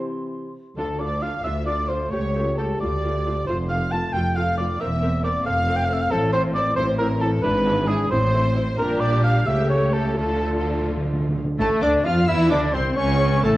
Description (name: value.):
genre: quick classical-period movement for symphony orchestra.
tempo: 84-93 BPM (dotted quarters).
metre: 6/8.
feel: rubato.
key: D minor.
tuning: A4 = 440 Hz.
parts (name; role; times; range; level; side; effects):
baroque flute; second line; 0.0-0.5, 11.6-13.5 s; A4 to C6; -29 LUFS; left 1 dB; none.
clear clarinet; second line; 0.0-0.6, 11.6-13.6 s; E4 to F5; -30 LUFS; left 1 dB; none.
mellow cor anglais; second line; 0.0-13.6 s; A3 to A5; -25 LUFS; equal; none.
mellow bassoon; accompaniment; 0.0-0.5, 11.6-13.5 s; C3 to F4; -27 LUFS; equal; none.
mellow French horn section; sustained chords; 0.0-13.6 s; E3 to G4; -30 LUFS; left 3 dB; none.
rich chamber violin section; melody; 0.8-13.5 s; G#4 to F6; -33 LUFS; left 2 dB; none.
rich chamber violin section; second line; 0.8-13.6 s; A3 to A5; -32 LUFS; left 2 dB; none.
rich symphonic viola section; accompaniment; 0.8-13.6 s; A3 to Bb4; -30 LUFS; equal; none.
clear studio cello section; bass; 0.8-13.5 s; C#2 to F3; -26 LUFS; right 1 dB; none.
rich chamber double bass section; bass; 0.8-13.5 s; E1 to F2; -26 LUFS; right 1 dB; none.
timpani; percussion; 0.8-1.4, 10.2-11.5 s; D3; -29 LUFS; right 1 dB; none.
clear trumpet; stabs; 11.6-13.6 s; A4 to F5; -30 LUFS; right 1 dB; none.
room: moderate recital hall reverb, RT60 1.6 s.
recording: worn, warbling old tape, cassette tape, warbly pitch drift.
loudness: -19 LUFS.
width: side -16 dB against mid.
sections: 0.8-11.6 A section; 11.6-13.6 A section.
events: timpani fill 10.2-11.6.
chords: 0.0 C; 0.8 Dm; 2.1 A7/C#; 2.8 Dm; 3.5 F; 4.8 C7/E; 5.5 F; 6.1 Am; 7.4 E7/G#; 8.1 Am; 8.8 Gm/Bb; 9.5 A7/C#; 10.2 Dm; 13.0 A/C#.